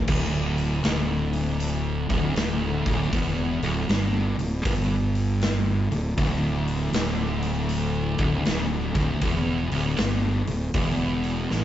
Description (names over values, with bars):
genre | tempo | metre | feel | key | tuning
stoner and doom metal | 79 BPM | 4/4 | swing 65% on 8ths | unclear | A4 = 440 Hz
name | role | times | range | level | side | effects
fuzz guitar | riff | 0.0-11.6 s | D2 to A2 | -26 LUFS | equal | distortion
fuzz fingered electric bass | bass | 0.0-11.6 s | D1 to A1 | -26 LUFS | equal | overdrive, tube saturation
big rock drum kit | drums | 0.1-11.6 s | crash cymbal, hi-hat, kick drum, snare drum | -28 LUFS | left 1 dB | none
room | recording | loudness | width
moderate studio ambience, RT60 0.5 s | rough rehearsal-room recording, nothing above 7.8 kHz | -22 LUFS | side -12 dB against mid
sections
0.0-11.6 A section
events
none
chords
0.0 D5